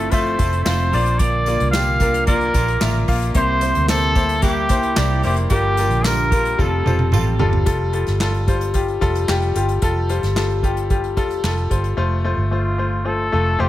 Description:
piano-driven pop; 111 BPM; 4/4; straight; F major; A4 = 440 Hz
clear trumpet; melody; 0.0-7.1, 12.5-13.7 s; F4 to F5; -21 LUFS; equal
bright grand piano; accompaniment; 0.0-13.7 s; G2 to F5; -22 LUFS; left 3 dB
twelve-string electric guitar; riff; 0.0-7.7 s; G2 to Bb4; -27 LUFS; right 8 dB; analog chorus
vintage muted fingered electric bass; bass; 0.0-13.7 s; F1 to D2; -21 LUFS; equal
unplugged drum kit; drums; 0.1-12.0 s; handclaps, hi-hat, kick drum, snare drum, toms; -22 LUFS; equal
tambourine; percussion; 0.1-7.3 s; -38 LUFS; right 10 dB
light reverb, small room reverb; -16 LUFS; side -14 dB against mid
0.0-7.7 A section; 7.7-12.0 B section; 12.0-13.7 C section
drum fill 6.6-7.7
0.0 Fmaj7; 0.9 Bb; 3.4 C7; 5.5 Gm7; 6.6 Fadd9

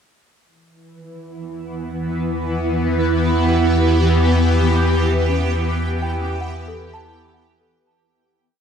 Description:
ambient; 65 BPM; 4/4; straight; E dorian; A4 = 440 Hz
shimmering ambient pad; sustained chords; 1.4-7.8 s; E3 to G4; -19 LUFS; right 1 dB; chorus, built-in reverb, phaser
deep rumbling drone; bass; 2.0-7.8 s; E2; -20 LUFS; equal; built-in reverb
hand-pumped harmonium; drone; 4.1-7.9 s; E3 to B3; -28 LUFS; left 5 dB; stereo widening
small celesta; arpeggios; 5.3-8.6 s; C#4 to A5; -33 LUFS; right 1 dB; tape echo
moderate plate reverb, RT60 2.5 s; echo-heavy mix, cassette tape; -16 LUFS; side -7 dB against mid
0.4-7.8 A section
fade-in on celesta 0.4-7.8; fade-out 4.1-7.8
0.4 Em69

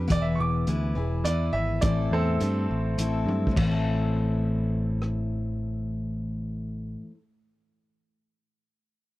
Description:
folk rock and heartland rock; 104 BPM; 3/4; straight; A minor; A4 = 439 Hz
picked steel-string acoustic guitar; accompaniment; 0.0-7.2 s; A2 to B4; -28 LUFS; left 2 dB
picked electric bass; bass; 0.0-7.0 s; E1 to G2; -28 LUFS; equal
bright grand piano; melody; 0.1-3.5 s; C4 to D6; -31 LUFS; right 2 dB
vintage drum kit; drums; 0.1-5.1 s; crash cymbal, hi-hat, kick drum, rim click, toms; -28 LUFS; equal
little or no reverb; dry, close 1970s-style studio recording; -24 LUFS; side -17 dB against mid
0.0-3.6 A section; 3.6-7.0 B section
grand piano solo 0.0-3.6; drum fill 3.3
0.1 E; 1.8 Am

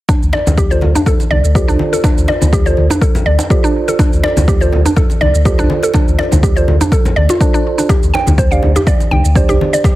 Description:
afro house; 123 BPM; 4/4; swing 55% on 16ths; D minor; A4 = 444 Hz
mallet-like synth pluck; arpeggios; 0.1-10.0 s; D4 to G5; -17 LUFS; equal; chorus, sidechain pumping, ping-pong delay
electronic kick drum; drums; 0.1-10.0 s; -13 LUFS; equal; overdrive
shaker; drums; 0.1-10.0 s; -28 LUFS; right 6 dB; overdrive
djembe; percussion; 0.1-10.0 s; -21 LUFS; right 1 dB
warm sub bass; bass; 0.2-9.6 s; C2 to D2; -13 LUFS; equal; sidechain pumping
congas; percussion; 0.3-10.0 s; -21 LUFS; left 3 dB
mellow tine electric piano; stabs; 0.7-10.0 s; D4 to D5; -20 LUFS; right 4 dB; sidechain pumping, low-pass filter, ping-pong delay
digital ambience; heavily compressed radio sound; -10 LUFS; side -16 dB against mid
0.1-10.0 A section
filter sweep on tine electric piano 0.1-10.0
0.1 Dm7; 7.9 Gsus4

